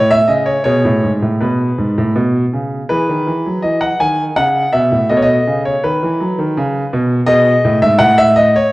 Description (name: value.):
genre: classical-period piano sonatina.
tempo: 82 BPM.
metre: 3/4.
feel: straight.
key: E major.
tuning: A4 = 440 Hz.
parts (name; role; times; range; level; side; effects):
clear concert grand piano; solo; 0.0-8.7 s; G#2 to G#5; -12 LUFS; equal; none.
room: wet recital hall reverb, RT60 1.4 s.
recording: worn, warbling old tape, cassette tape, warbly pitch drift.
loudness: -12 LUFS.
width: side -19 dB against mid.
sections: 0.0-8.7 A section.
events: none.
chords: 0.0 A; 0.7 G#madd11; 2.2 Bsus2; 2.9 E; 5.1 B7; 6.6 Bsus2; 7.3 G#m/B; 8.0 N.C..